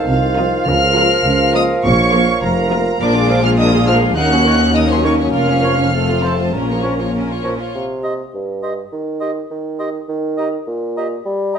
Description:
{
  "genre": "cinematic, playful, whimsical film cue",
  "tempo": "102 BPM",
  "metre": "2/4",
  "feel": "straight",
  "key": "Bb minor, C minor from 7.7 s",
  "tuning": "A4 = 441 Hz",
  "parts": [
    { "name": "warm chamber violin section", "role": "melody", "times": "0.0-7.1 s", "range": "F5 to Gb6", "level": "-20 LUFS", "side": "equal", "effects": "none" },
    { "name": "hollow small flute group", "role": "second line", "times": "0.0-11.6 s", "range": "F4 to C6", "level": "-23 LUFS", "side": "equal", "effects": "none" },
    { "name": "warm clarinet", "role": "second line", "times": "0.0-11.6 s", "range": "G4 to C5", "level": "-28 LUFS", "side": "equal", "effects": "none" },
    { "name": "warm oboe", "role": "second line", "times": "0.0-11.6 s", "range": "C5 to F5", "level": "-24 LUFS", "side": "right 2 dB", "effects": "none" },
    { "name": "dark bassoon", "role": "accompaniment", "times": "0.0-11.6 s", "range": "G2 to G3", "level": "-22 LUFS", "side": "right 2 dB", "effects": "none" },
    { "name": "dark chamber cello section", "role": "bass", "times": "0.1-7.5 s", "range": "Eb2 to Db3", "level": "-21 LUFS", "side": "left 1 dB", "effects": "none" },
    { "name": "warm chamber double bass section", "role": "bass", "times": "0.1-7.5 s", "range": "F1 to Eb2", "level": "-22 LUFS", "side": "right 1 dB", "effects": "none" },
    { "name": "warm tuba", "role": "bass", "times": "0.1-7.5 s", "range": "F1 to Eb2", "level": "-21 LUFS", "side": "right 3 dB", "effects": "none" },
    { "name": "warm chamber violin section", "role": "second line", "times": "0.4-7.7 s", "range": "Db4 to Db5", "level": "-23 LUFS", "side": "equal", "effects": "none" },
    { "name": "dark studio viola section", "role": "accompaniment", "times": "0.4-7.5 s", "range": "Eb3 to Eb4", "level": "-24 LUFS", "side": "equal", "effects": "none" },
    { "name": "dark French horn section", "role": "sustained chords", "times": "0.4-7.4 s", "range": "Ab3 to F4", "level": "-22 LUFS", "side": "left 3 dB", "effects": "none" }
  ],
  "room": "wet stone room reverb, RT60 1.0 s",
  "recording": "nothing above 10.7 kHz",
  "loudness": "-14 LUFS",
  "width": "side -7 dB against mid",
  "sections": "0.0-7.7 A section; 7.7-11.6 B section",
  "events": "none",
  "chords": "0.0 F7(no3)/C; 0.7 Bbm/Db; 1.8 Bbm; 3.0 Bb7; 4.2 Ebm7; 5.3 Bbm/F; 5.9 F; 6.5 Bbm; 7.7 C5; 8.9 N.C.; 10.1 Eb5"
}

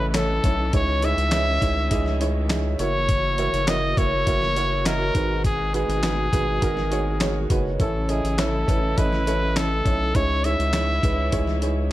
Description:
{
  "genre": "piano-driven pop",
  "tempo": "102 BPM",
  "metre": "4/4",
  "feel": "straight",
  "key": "unclear",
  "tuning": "A4 = 440 Hz",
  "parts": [
    { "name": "warm trumpet", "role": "melody", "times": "0.0-11.6 s", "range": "G#4 to E5", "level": "-25 LUFS", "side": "equal", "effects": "ping-pong delay" },
    { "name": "warm upright piano", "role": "accompaniment", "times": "0.0-11.9 s", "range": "G#2 to E5", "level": "-27 LUFS", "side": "right 3 dB", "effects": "none" },
    { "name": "warm studio string section", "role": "sustained chords", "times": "0.0-11.9 s", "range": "B2 to F#4", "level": "-35 LUFS", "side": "left 1 dB", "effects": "none" },
    { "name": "round analog bass", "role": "bass", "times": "0.0-11.9 s", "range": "F#1 to C#2", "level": "-25 LUFS", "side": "equal", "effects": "none" },
    { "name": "dusty soul sampler-style drum kit", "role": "drums", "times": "0.1-11.8 s", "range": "handclaps, hi-hat, kick drum, snare drum", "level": "-25 LUFS", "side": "equal", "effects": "none" }
  ],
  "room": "light reverb",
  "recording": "none",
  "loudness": "-20 LUFS",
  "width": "side -15 dB against mid",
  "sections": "0.0-11.9 A section",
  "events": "none",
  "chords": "0.0 A; 0.7 C#madd9; 2.8 F#7; 5.2 G#m7; 7.8 A; 10.2 C#madd9"
}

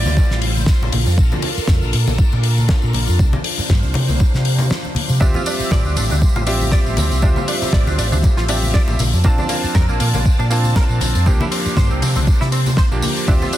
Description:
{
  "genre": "nu-disco, nu disco",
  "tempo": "119 BPM",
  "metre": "4/4",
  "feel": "swing 56% on 16ths",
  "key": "unclear",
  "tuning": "A4 = 440 Hz",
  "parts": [
    { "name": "string machine, full ensemble", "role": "sustained chords", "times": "0.0-13.6 s", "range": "F3 to A5", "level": "-26 LUFS", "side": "right 1 dB", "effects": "phaser, ensemble chorus, sidechain pumping" },
    { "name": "overdriven fingered electric bass", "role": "bass", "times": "0.0-13.4 s", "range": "A1 to C3", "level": "-18 LUFS", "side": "equal", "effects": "none" },
    { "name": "congas and tambourine", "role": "percussion", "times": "0.1-13.5 s", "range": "none", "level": "-26 LUFS", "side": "left 3 dB", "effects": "none" },
    { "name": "electronic kick drum", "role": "drums", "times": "0.2-13.4 s", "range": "none", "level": "-15 LUFS", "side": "equal", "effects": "overdrive, small room ambience" },
    { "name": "damped 70s drum kit", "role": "drums", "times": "0.3-13.6 s", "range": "hi-hat, snare drum, tambourine", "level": "-24 LUFS", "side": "left 2 dB", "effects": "small room ambience" },
    { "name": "bright electric grand piano", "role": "accompaniment", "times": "5.2-13.6 s", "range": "F3 to A5", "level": "-24 LUFS", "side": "right 2 dB", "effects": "sidechain pumping, tape echo" },
    { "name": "direct-recorded clean electric guitar", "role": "riff", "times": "5.2-13.6 s", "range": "Bb3 to D5", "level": "-27 LUFS", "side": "right 2 dB", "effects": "ensemble chorus, tape echo" }
  ],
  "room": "small room ambience",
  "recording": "dense, heavily limited modern master",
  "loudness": "-14 LUFS",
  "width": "side -13 dB against mid",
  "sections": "0.0-13.6 A section",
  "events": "break 4.7-5.2",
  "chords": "0.0 Dm11; 0.9 Bbmaj7; 3.2 C9sus4; 5.2 Dm11; 9.0 Bbmaj7; 11.3 C9sus4"
}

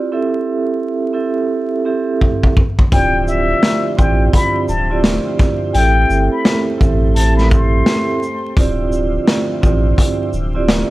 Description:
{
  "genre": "hip hop, boom-bap hip-hop",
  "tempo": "85 BPM",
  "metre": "4/4",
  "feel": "swing 62% on 16ths",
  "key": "D minor",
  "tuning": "A4 = 444 Hz",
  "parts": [
    { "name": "vibraphone with medium mallets", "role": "accompaniment", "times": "0.0-10.9 s", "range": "C4 to E5", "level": "-18 LUFS", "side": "right 4 dB", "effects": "cassette tape, high-pass filter, low-pass filter" },
    { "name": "raw garage drum kit", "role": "drums", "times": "2.2-10.9 s", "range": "hi-hat, kick drum, shaker, snare drum", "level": "-16 LUFS", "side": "equal", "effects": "none" },
    { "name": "trumpet with plunger mute", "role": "melody", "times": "2.9-8.5 s", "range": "E5 to C6", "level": "-18 LUFS", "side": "left 3 dB", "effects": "high-pass filter, low-pass filter, slapback echo" },
    { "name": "tonewheel organ", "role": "sustained chords", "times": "2.9-10.9 s", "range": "D3 to E5", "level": "-27 LUFS", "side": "left 2 dB", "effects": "chorus vibrato, slow rotary speaker, high-pass filter, low-pass filter" },
    { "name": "warm sub bass", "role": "bass", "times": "2.9-10.8 s", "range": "D1 to A1", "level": "-16 LUFS", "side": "equal", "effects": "none" }
  ],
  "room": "little or no reverb",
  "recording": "vinyl crackle",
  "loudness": "-13 LUFS",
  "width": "side -17 dB against mid",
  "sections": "0.0-10.9 A section",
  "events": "drum fill 2.2-2.9",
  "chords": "0.1 Am7; 2.9 Dm11; 5.7 Am7; 8.6 Dm11"
}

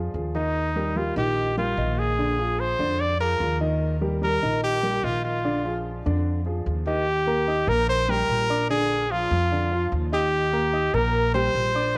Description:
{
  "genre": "latin, Cuban son and guajira",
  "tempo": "147 BPM",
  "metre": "4/4",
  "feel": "straight",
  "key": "Eb major",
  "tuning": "A4 = 441 Hz",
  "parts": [
    { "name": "warm grand piano", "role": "arpeggios", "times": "0.0-12.0 s", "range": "D3 to Eb6", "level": "-31 LUFS", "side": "equal", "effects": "none" },
    { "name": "upright bass", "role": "bass", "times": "0.0-12.0 s", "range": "Bb1 to F2", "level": "-30 LUFS", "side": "equal", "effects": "none" },
    { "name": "bright trumpet", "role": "melody", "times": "0.4-12.0 s", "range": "Eb4 to D5", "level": "-27 LUFS", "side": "equal", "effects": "none" }
  ],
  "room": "light reverb, small room ambience",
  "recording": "none",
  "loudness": "-24 LUFS",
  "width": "mono",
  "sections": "0.0-7.1 A section; 7.1-12.0 B section",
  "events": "none",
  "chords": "0.0 Bb7(no3) (rootless); 0.6 Ebadd9; 2.2 Bb7; 3.8 Eb; 5.4 Bb7; 7.1 Eb; 8.7 Bb7; 10.3 Eb"
}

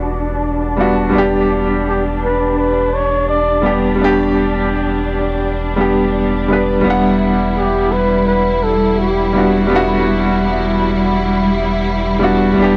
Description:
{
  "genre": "trip hop",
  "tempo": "84 BPM",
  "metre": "4/4",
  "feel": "straight",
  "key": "E minor",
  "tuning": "A4 = 440 Hz",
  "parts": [
    { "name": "clear upright piano", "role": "accompaniment", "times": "0.0-12.8 s", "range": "G3 to F#5", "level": "-18 LUFS", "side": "equal", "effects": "tremolo, cassette tape, tape echo" },
    { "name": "clear symphonic string section", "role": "sustained chords", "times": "0.0-12.8 s", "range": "G3 to E4", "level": "-21 LUFS", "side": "equal", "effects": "low-pass filter, cassette tape" },
    { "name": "warm sub bass", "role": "bass", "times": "0.0-12.8 s", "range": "E1", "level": "-25 LUFS", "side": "equal", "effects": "none" },
    { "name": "trumpet with bucket mute", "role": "melody", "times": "1.9-9.5 s", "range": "G4 to D5", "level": "-21 LUFS", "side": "equal", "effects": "cassette tape, tape echo" }
  ],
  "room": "light reverb",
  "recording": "home recording on cassette",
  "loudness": "-15 LUFS",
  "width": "mono",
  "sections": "0.0-12.8 A section",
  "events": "filter sweep on string section 0.0-12.8",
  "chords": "0.0 Em7; 1.1 G/E; 6.9 Em7"
}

